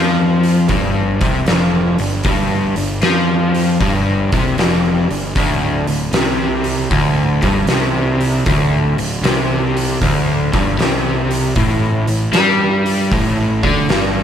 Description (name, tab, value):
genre	blues rock power trio and southern rock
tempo	77 BPM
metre	4/4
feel	swing 67% on 8ths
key	unclear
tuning	A4 = 436 Hz
part	overdriven semi-hollow guitar	riff	0.0-14.2 s	D2 to G3	-16 LUFS	equal	none
part	fuzz picked electric bass	bass	0.0-14.2 s	D1 to G2	-22 LUFS	equal	overdrive
part	oversized low-tuned drum kit	drums	0.4-14.1 s	hi-hat, kick drum, snare drum	-19 LUFS	equal	none
room	moderate concert hall reverb, RT60 2.2 s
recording	none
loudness	-13 LUFS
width	side -9 dB against mid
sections	0.0-14.2 A section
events	none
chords	0.0 Fsus2; 5.4 D7sus4; 11.6 Gsus2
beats	0.70 1.47 | 2.25 3.03 3.81 4.58 | 5.36 6.13 6.91 7.69 | 8.46 9.24 10.01 10.79 | 11.56 12.34 13.12 13.89